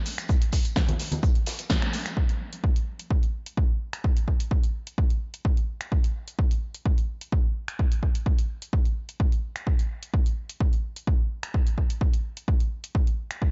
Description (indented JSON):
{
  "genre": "house",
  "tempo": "128 BPM",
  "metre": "4/4",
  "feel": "straight",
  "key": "none",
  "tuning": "none",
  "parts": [
    { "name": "punchy analog drum machine", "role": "drums", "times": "0.1-13.4 s", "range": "cabasa, finger snaps, hi-hat, snare drum", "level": "-35 LUFS", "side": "equal", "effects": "small room reverb" },
    { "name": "shaker and snare drum", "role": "drums", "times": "0.1-2.0 s", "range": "none", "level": "-46 LUFS", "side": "equal", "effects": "none" },
    { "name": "tambourine and congas", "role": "percussion", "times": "0.1-2.1 s", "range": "none", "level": "-37 LUFS", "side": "equal", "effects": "none" },
    { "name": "electronic kick drum", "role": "drums", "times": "0.3-13.5 s", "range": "none", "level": "-26 LUFS", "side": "equal", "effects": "small room reverb" }
  ],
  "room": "small room ambience",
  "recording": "dark, warm production, nothing above 7.7 kHz",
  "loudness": "-26 LUFS",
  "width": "mono",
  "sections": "0.0-2.2 A section; 2.2-13.5 B section",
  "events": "band accent 1.7",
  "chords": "none"
}